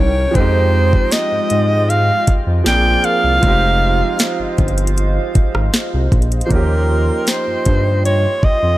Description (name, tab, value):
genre	contemporary R&B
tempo	78 BPM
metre	4/4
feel	straight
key	F minor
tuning	A4 = 439 Hz
part	breathy alto saxophone	melody	0.0-8.8 s	Bb4 to G5	-17 LUFS	equal	none
part	clear grand piano	accompaniment	0.0-8.8 s	F3 to Ab4	-22 LUFS	right 4 dB	none
part	hollow soft pad	sustained chords	0.0-8.8 s	Ab3 to C6	-25 LUFS	right 1 dB	chorus
part	smooth gliding synth bass	bass	0.0-8.8 s	F1 to Ab2	-16 LUFS	equal	none
part	smooth R&B drum kit	drums	0.4-8.6 s	hi-hat, kick drum, rim click, snare drum	-16 LUFS	equal	none
room	little or no reverb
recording	none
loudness	-13 LUFS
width	side -16 dB against mid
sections	0.0-6.5 A section; 6.5-8.8 B section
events	none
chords	0.4 Fm9; 2.7 Bb7; 3.4 Fm7; 6.5 Eb13